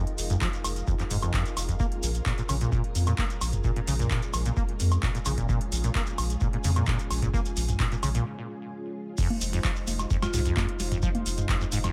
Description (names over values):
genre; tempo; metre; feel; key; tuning
acid house; 130 BPM; 4/4; straight; F minor; A4 = 441 Hz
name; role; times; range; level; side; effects
string machine, full ensemble; sustained chords; 0.0-11.9 s; Ab3 to C5; -40 LUFS; equal; ensemble chorus, sidechain pumping
deep acid bass; riff; 0.0-11.9 s; F2 to Bb3; -33 LUFS; equal; overdrive, lush chorus, delay
booming analog drum machine; drums; 0.1-11.9 s; congas, crash cymbal, handclaps, hi-hat, snare drum, toms, woodblock; -34 LUFS; equal; overdrive
round analog bass; bass; 0.2-11.9 s; F1 to F2; -30 LUFS; equal; sidechain pumping
shekere; percussion; 0.2-11.9 s; none; -41 LUFS; equal; none
electronic kick drum; drums; 0.4-11.6 s; none; -32 LUFS; equal; overdrive
marimba with hard mallets; melody; 10.2-10.4 s; F4; -39 LUFS; equal; tape echo
room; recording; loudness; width
digital ambience; none; -27 LUFS; mono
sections
0.0-9.2 A section; 9.2-11.9 B section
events
break 8.3-9.2; drop 9.2-11.9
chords
0.0 Fm7; 1.8 Bbm7; 9.2 Fm7